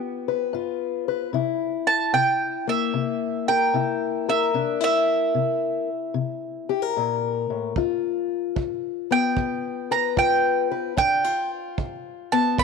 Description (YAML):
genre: acoustic country blues, solo or duo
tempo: 75 BPM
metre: 4/4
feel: swing 67% on 8ths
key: unclear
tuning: A4 = 440 Hz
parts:
  - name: fingerpicked acoustic archtop guitar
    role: accompaniment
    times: 0.0-12.6 s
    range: G2 to B4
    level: -25 LUFS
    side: left 10 dB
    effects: none
  - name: mandolin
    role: melody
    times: 1.9-12.6 s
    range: E5 to B5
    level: -23 LUFS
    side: right 4 dB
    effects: none
  - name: kick drum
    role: drums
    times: 7.8-12.6 s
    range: none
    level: -28 LUFS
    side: right 4 dB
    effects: none
room: moderate echo chamber reverb, RT60 2.3 s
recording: 1960s-style stereo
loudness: -21 LUFS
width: side -5 dB against mid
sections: 0.0-12.6 A section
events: mandolin solo 0.0-12.6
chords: 0.0 G7; 1.3 C7; 7.8 G7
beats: 0.52 | 1.33 2.13 2.94 3.74 | 4.54 5.35 6.15 6.95 | 7.76 8.56 9.36 10.17 | 10.97 11.78 12.58